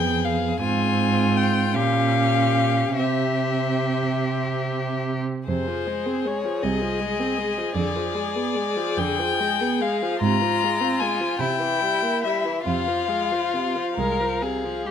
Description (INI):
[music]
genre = classical, slow romantic movement for string quartet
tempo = 44-55 BPM (dotted quarters)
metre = 6/8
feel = rubato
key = F minor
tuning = A4 = 440 Hz
[part]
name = rich violin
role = melody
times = 0.0-14.8 s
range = C5 to Bb5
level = -25 LUFS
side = left 8 dB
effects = none
[part]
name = rich violin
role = second line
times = 0.0-14.9 s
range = E4 to Bb4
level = -27 LUFS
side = left 3 dB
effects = none
[part]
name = warm viola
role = accompaniment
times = 0.0-14.9 s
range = C3 to Db4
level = -27 LUFS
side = right 3 dB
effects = none
[part]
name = rich cello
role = bass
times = 0.0-14.9 s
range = C2 to C3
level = -26 LUFS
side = right 5 dB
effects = none
[sound]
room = moderate recital hall reverb, RT60 1.4 s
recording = close, detailed microphones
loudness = -21 LUFS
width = side -8 dB against mid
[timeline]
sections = 0.0-14.9 A section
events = none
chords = 0.0 Fdim; 0.6 Fm/Ab; 1.8 Gdim/Bb; 3.0 C; 5.5 Fm; 7.8 Fdim7; 10.2 Fm/Ab; 11.4 C7; 12.7 Fm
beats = | 0.63 1.76 | 2.99 4.24 | 5.48 6.64 | 7.76 8.98 | 10.23 11.41 | 12.67 13.98